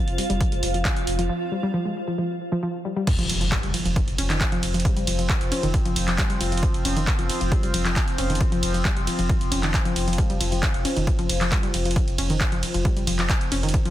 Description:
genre	driving peak-time techno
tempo	135 BPM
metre	4/4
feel	straight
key	unclear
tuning	A4 = 440 Hz
part	analog drone	drone	0.1-13.9 s	F3 to C4	-31 LUFS	left 1 dB	chorus, sidechain pumping
part	granular cloud pad	texture	0.0-1.3 s	F4 to F5	-30 LUFS	equal	built-in reverb, sidechain pumping
part	warm sub bass	bass	0.1-13.9 s	F1	-27 LUFS	equal	tube saturation, sidechain pumping, low-pass filter
part	punchy analog drum machine	drums	0.1-13.9 s	crash cymbal, handclaps, hi-hat, ride cymbal	-28 LUFS	right 1 dB	none
part	warbly dusty pluck	riff	0.2-13.9 s	Eb3 to Db4	-28 LUFS	left 1 dB	chorus, sidechain pumping, ping-pong delay
part	electronic kick drum	drums	0.4-13.8 s	none	-23 LUFS	equal	none
part	impact	sound effects	3.1-4.8 s	none	-32 LUFS	equal	none
room	little or no reverb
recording	dense, heavily limited modern master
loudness	-20 LUFS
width	side -13 dB against mid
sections	0.0-3.1 A section; 3.1-13.9 B section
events	filter sweep on synth arpeggio sound 0.0-3.1; break 1.3-3.1; drop 3.1-13.9; impact 3.1-4.8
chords	0.0 F5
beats	0.41 0.85 | 1.29 1.74 2.18 2.63 | 3.07 3.52 3.96 4.41 | 4.85 5.29 5.74 6.18 | 6.63 7.07 7.52 7.96 | 8.41 8.85 9.29 9.74 | 10.18 10.63 11.07 11.52 | 11.96 12.41 12.85 13.29 | 13.74

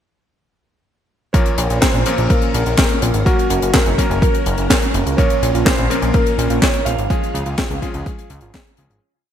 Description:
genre	italo disco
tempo	125 BPM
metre	4/4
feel	straight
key	Bb minor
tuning	A4 = 440 Hz
part	dark grand piano	melody	1.3-8.5 s	Gb4 to F5	-23 LUFS	right 1 dB	wide subtle chorus, ping-pong delay
part	string machine, full ensemble	sustained chords	1.3-9.0 s	Bb3 to F5	-24 LUFS	right 1 dB	phaser, ensemble chorus
part	bright electric grand piano	stabs	1.3-9.0 s	Bb2 to Bb4	-25 LUFS	left 5 dB	vintage 12-bit sampler grit
part	electronic kick drum	drums	1.3-8.6 s	none	-18 LUFS	equal	overdrive, studio ambience
part	tight funk drum kit	drums	1.3-9.0 s	handclaps, hi-hat, snare drum	-20 LUFS	left 1 dB	studio ambience, gated reverb
part	fat analog bass	bass	1.6-9.0 s	Gb1 to Db2	-21 LUFS	equal	tube saturation
part	soft round pluck	arpeggios	5.2-9.0 s	Ab3 to Bb4	-29 LUFS	right 4 dB	chorus, ping-pong delay
room	light reverb, small room ambience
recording	bright 1980s-style digital production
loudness	-14 LUFS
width	side -9 dB against mid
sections	1.3-9.0 chorus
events	fade-out 6.5-9.0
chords	1.3 Bbm; 3.3 Gb; 5.2 Bbm; 7.1 Db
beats	| 1.34 1.82 2.30 2.78 | 3.26 3.74 4.22 4.70 | 5.18 5.66 6.14 6.62 | 7.10 7.58 8.06 8.54

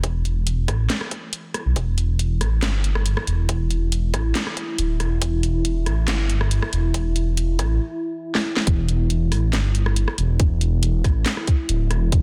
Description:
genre	deep dubstep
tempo	139 BPM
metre	4/4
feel	half-time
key	E minor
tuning	A4 = 441 Hz
part	deep dark ambient pad	sustained chords	1.4-12.2 s	E4	-34 LUFS	equal	chorus, built-in reverb
part	dark detuned saw bass	bass	0.0-12.2 s	D1 to B1	-22 LUFS	equal	none
part	electronic kick drum	drums	0.0-12.2 s	none	-22 LUFS	equal	high-pass filter on kick, high-pass filter on room
part	garage drum kit	drums	0.0-12.2 s	handclaps, hi-hat, rim click, snare drum	-28 LUFS	equal	none
room	light reverb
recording	dense, heavily limited modern master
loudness	-22 LUFS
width	mono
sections	0.0-8.7 A section; 8.7-12.2 B section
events	build-up 0.0-8.7; filter sweep on ambient pad 0.0-8.7; drum fill 8.3-8.7; drop 8.7-12.2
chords	0.0 E5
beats	| 0.04 0.47 0.90 1.33 | 1.76 2.19 2.63 3.06 | 3.49 3.92 4.35 4.79 | 5.22 5.65 6.08 6.51 | 6.94 7.38 7.81 8.24 | 8.67 9.10 9.53 9.96 | 10.40 10.83 11.26 11.69 | 12.12

